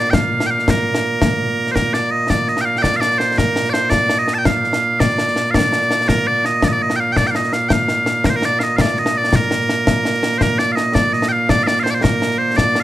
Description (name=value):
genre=scottish traditional, Scottish pipe music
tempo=111 BPM (dotted quarters)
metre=6/8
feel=straight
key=Bb major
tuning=A4 = 441 Hz
part: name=loud bright bagpipes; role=melody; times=0.0-12.8 s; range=Bb2 to A5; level=-16 LUFS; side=right 1 dB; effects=none
part: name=concert snare drum and concert bass drum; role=drums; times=0.0-12.8 s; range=none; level=-19 LUFS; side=left 1 dB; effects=none
room=light reverb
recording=close, detailed microphones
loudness=-14 LUFS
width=side -14 dB against mid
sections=0.0-1.8 A section; 1.8-10.4 B section; 10.4-12.8 B section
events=none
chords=none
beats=0.13 | 0.67 1.21 | 1.75 2.30 | 2.84 3.38 | 3.92 4.46 | 5.00 5.54 | 6.08 6.62 | 7.16 7.70 | 8.24 8.78 | 9.32 9.86 | 10.40 10.94 | 11.48 12.03 | 12.57